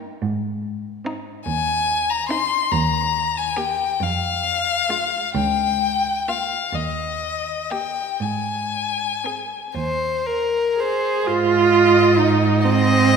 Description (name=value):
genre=classical, slow romantic movement for string quartet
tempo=38-48 BPM (dotted quarters)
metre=6/8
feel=rubato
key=Ab major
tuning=A4 = 443 Hz
part: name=warm violin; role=second line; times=0.0-13.2 s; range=Eb4 to Eb5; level=-25 LUFS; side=left 3 dB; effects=none
part: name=warm viola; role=accompaniment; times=0.0-13.2 s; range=Ab3 to Ab4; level=-17 LUFS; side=right 4 dB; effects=none
part: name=rich cello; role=bass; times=0.2-13.2 s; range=Db2 to Ab2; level=-25 LUFS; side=right 3 dB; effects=none
part: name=rich violin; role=melody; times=1.5-13.2 s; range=Eb5 to C6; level=-22 LUFS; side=left 6 dB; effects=none
room=wet concert hall reverb, RT60 2.4 s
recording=minimal, uncompressed stereo recording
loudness=-18 LUFS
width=side -6 dB against mid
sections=0.0-11.3 A section; 11.3-13.2 A section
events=none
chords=0.2 Ab; 2.7 Eb; 4.0 Fm; 5.4 Bbm/Db; 6.7 Eb; 8.2 Ab